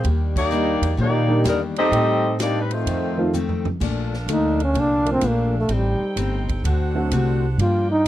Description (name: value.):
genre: jazz, big band swing.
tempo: 127 BPM.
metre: 4/4.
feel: swing 66% on 8ths.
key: Bb major from 3.8 s.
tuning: A4 = 440 Hz.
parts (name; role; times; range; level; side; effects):
mellow saxophone section; melody; 0.0-3.3 s; G3 to Eb5; -22 LUFS; left 4 dB; none.
brilliant trombone section; second line; 0.0-3.3 s; D3 to Eb4; -25 LUFS; right 7 dB; none.
picked steel-string acoustic guitar; accompaniment; 0.0-8.1 s; F2 to F#4; -27 LUFS; left 5 dB; none.
upright bass; bass; 0.0-8.1 s; G1 to Bb2; -22 LUFS; equal; none.
swinging big-band drum kit; drums; 0.0-8.1 s; crash cymbal, hi-hat, kick drum, ride cymbal, snare drum, toms; -30 LUFS; right 1 dB; none.
warm upright piano; accompaniment; 1.3-7.1 s; D3 to G4; -23 LUFS; right 2 dB; none.
clear saxophone section; sustained chords; 3.8-8.1 s; D4 to G5; -33 LUFS; right 3 dB; none.
warm trombone; melody; 4.3-8.1 s; G3 to F4; -20 LUFS; right 1 dB; none.
room: light reverb.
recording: dry, close 1970s-style studio recording.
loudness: -18 LUFS.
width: side -13 dB against mid.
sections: 0.0-3.8 A section; 3.8-8.1 B section.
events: band accent 0.3; drum fill 3.3-3.8; trombone solo 3.8-8.1.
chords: 0.0 Ebmaj7; 1.9 Am7b5; 2.9 F7; 3.8 Bbmaj7; 5.7 Am7b5; 6.6 D7.